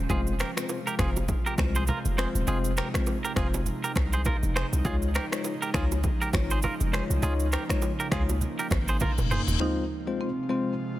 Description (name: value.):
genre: afrobeats.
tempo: 101 BPM.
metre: 4/4.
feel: swing 58% on 16ths.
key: F minor.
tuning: A4 = 439 Hz.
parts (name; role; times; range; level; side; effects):
airy breathy pad; sustained chords; 0.0-11.0 s; C3 to F4; -36 LUFS; right 2 dB; chorus, sidechain pumping.
hard-hitting 808-style bass; bass; 0.0-9.6 s; Eb1 to Db2; -28 LUFS; equal; none.
bright tine electric piano; accompaniment; 0.1-10.7 s; Ab3 to Db5; -33 LUFS; left 5 dB; none.
twangy electric guitar; riff; 0.1-9.4 s; F4 to C5; -33 LUFS; right 3 dB; digital delay.
deep house drum kit; drums; 0.1-9.6 s; finger snaps, kick drum, rim click, shaker, toms; -29 LUFS; equal; soft clipping on snare.
congas and bongos; percussion; 0.1-9.5 s; none; -36 LUFS; right 4 dB; none.
reverse cymbal; sound effects; 9.0-9.6 s; none; -36 LUFS; left 8 dB; none.
marimba with medium mallets; melody; 9.6-11.0 s; C4 to Eb4; -31 LUFS; right 1 dB; digital delay.
room: light reverb.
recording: dense, heavily limited modern master.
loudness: -25 LUFS.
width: side -15 dB against mid.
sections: 0.0-9.6 A section; 9.6-11.0 B section.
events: reverse cymbal 9.0-9.6; drum fill 9.0-9.6.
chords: 0.1 Fm; 4.9 Dbadd9; 9.6 Fm.